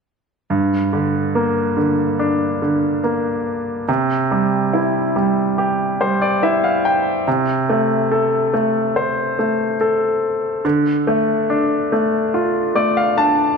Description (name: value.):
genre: pop.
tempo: 71 BPM.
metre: 4/4.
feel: straight.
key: unclear.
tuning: A4 = 442 Hz.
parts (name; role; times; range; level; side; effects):
clear grand piano; accompaniment; 0.5-13.6 s; G2 to A5; -16 LUFS; equal; none.
room: moderate scoring stage reverb, RT60 1.7 s.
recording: none.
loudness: -16 LUFS.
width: side -5 dB against mid.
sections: 0.5-13.6 A section.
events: grand piano fill 5.6-7.3, 12.3-13.6.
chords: 0.5 Gm; 3.9 C; 7.3 Am/C; 10.6 Dm.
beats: | 0.50 1.35 2.19 3.04 | 3.88 4.73 5.57 6.42 | 7.26 8.11 8.96 9.80 | 10.64 11.49 12.34 13.18.